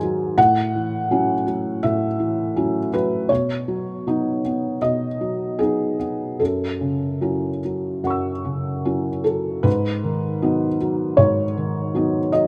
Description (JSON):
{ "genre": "neoclassical minimalist piano", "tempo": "72-83 BPM", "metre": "4/4", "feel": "rubato", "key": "F# dorian", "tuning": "A4 = 441 Hz", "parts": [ { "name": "felt-muted upright piano", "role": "solo", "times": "0.0-12.5 s", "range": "F#2 to E6", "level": "-22 LUFS", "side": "equal", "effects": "none" } ], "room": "little or no reverb", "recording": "none", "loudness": "-22 LUFS", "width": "mono", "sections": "0.0-9.7 A section; 9.7-12.5 A section", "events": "none", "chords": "0.4 F#m7/A; 3.3 B; 6.4 F#m7; 9.7 G#m7" }